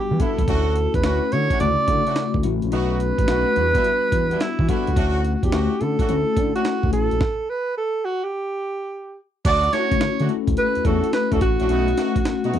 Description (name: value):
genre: R&B, new jack swing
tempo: 107 BPM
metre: 4/4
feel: swing 67% on 16ths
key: D major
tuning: A4 = 440 Hz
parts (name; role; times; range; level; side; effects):
- warm alto saxophone; melody; 0.0-12.6 s; E4 to D5; -22 LUFS; right 3 dB; slapback echo
- bell-like tine electric piano; accompaniment; 0.0-12.6 s; C#3 to A4; -24 LUFS; left 12 dB; phaser
- smooth gliding synth bass; bass; 0.1-12.6 s; A1 to E3; -23 LUFS; right 1 dB; none
- warm horn section; stabs; 0.2-12.6 s; G3 to F#4; -30 LUFS; right 3 dB; slapback echo
- breakbeat sampler-style drum kit; drums; 0.2-12.6 s; crash cymbal, hi-hat, kick drum, snare drum; -24 LUFS; right 1 dB; none
room: light reverb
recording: dry, close 1970s-style studio recording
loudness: -18 LUFS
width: side -10 dB against mid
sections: 0.0-9.4 A section; 9.4-12.6 B section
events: drum fill 0.0-0.5; stop 7.2-9.4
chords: 0.5 Dmaj7; 2.7 B7; 3.6 Em7; 5.0 Dmaj7; 7.2 N.C.; 9.4 Dmaj7; 11.7 B7